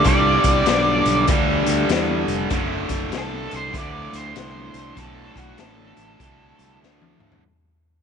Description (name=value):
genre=blues rock power trio and southern rock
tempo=98 BPM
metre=4/4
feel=swing 63% on 8ths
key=D mixolydian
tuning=A4 = 440 Hz
part: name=octave-fuzz lead guitar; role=melody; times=0.0-6.8 s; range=F#4 to D5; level=-23 LUFS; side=right 1 dB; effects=distortion, slapback echo
part: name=overdriven electric guitar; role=riff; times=0.0-7.4 s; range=D2 to G3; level=-22 LUFS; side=equal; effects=none
part: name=raw garage drum kit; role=drums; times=0.0-7.4 s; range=hi-hat, kick drum, snare drum, toms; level=-24 LUFS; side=left 2 dB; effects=none
part: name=fuzz fingered electric bass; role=bass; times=0.1-7.4 s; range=F1 to E2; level=-26 LUFS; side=right 1 dB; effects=overdrive
room=light reverb, small room ambience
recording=1960s-style stereo, nothing above 10.7 kHz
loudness=-17 LUFS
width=side -7 dB against mid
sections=0.0-7.4 A section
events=fade-out 0.0-7.4; drum fill 6.8-7.4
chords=0.0 G; 2.5 D5